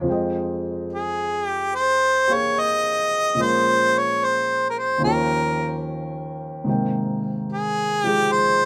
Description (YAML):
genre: jazz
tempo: 73 BPM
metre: 4/4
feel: swing 69% on 8ths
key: F minor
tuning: A4 = 440 Hz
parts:
  - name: warm grand piano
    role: accompaniment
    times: 0.0-8.7 s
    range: Eb2 to G5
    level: -27 LUFS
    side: equal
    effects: none
  - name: clear harmonica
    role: melody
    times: 0.9-8.7 s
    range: Ab4 to Eb5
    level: -21 LUFS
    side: equal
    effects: none
room: little or no reverb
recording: none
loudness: -22 LUFS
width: mono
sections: 0.1-8.7 A section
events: none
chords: 0.1 Fm9; 3.4 Bbm7; 5.0 Eb9; 6.7 Abmaj9